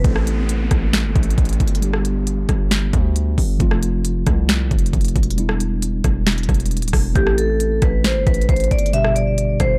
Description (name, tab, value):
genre	hip hop, trap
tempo	135 BPM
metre	4/4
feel	half-time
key	A minor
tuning	A4 = 440 Hz
part	mellow tine electric piano	accompaniment	0.0-9.8 s	B2 to A4	-27 LUFS	equal	low-pass filter
part	distorted 808-style bass	bass	0.0-9.8 s	D1 to D2	-22 LUFS	equal	distortion
part	trap drum kit	drums	0.0-9.7 s	hi-hat, kick drum, rim click, snare drum	-21 LUFS	equal	overdrive
part	downlifter	sound effects	0.0-3.6 s	none	-35 LUFS	equal	none
part	vibraphone with medium hard mallets	melody	7.2-9.8 s	G4 to E5	-23 LUFS	equal	low-pass filter, delay
room	digital ambience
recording	dark, warm production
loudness	-18 LUFS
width	mono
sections	0.0-9.8 A section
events	break 0.0-7.2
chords	0.0 Am; 1.8 G; 3.6 F; 5.4 Em7; 7.2 Am; 8.9 G